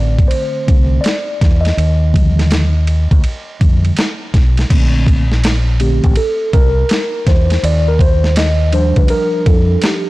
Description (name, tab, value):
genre	hip hop, jazz-hop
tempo	82 BPM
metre	4/4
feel	swing 65% on 16ths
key	Bb major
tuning	A4 = 441 Hz
part	mellow tine electric piano	accompaniment	0.0-10.1 s	D3 to Eb5	-18 LUFS	equal	medium stereo tremolo
part	deep dub fingered electric bass	bass	0.0-9.8 s	A1 to F2	-13 LUFS	equal	none
part	dusty soul sampler-style drum kit	drums	0.2-10.1 s	crash cymbal, hi-hat, kick drum, ride cymbal, snare drum	-14 LUFS	equal	none
room	little or no reverb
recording	blown-out, overdriven recording, vinyl crackle, overdrive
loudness	-11 LUFS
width	side -19 dB against mid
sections	0.0-4.7 A section; 4.7-10.1 B section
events	tine electric piano solo 0.0-4.7, 4.7-10.1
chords	0.0 Bbmaj9 (rootless); 1.8 Ebmaj9; 4.7 Bbmaj9; 7.6 Ebmaj9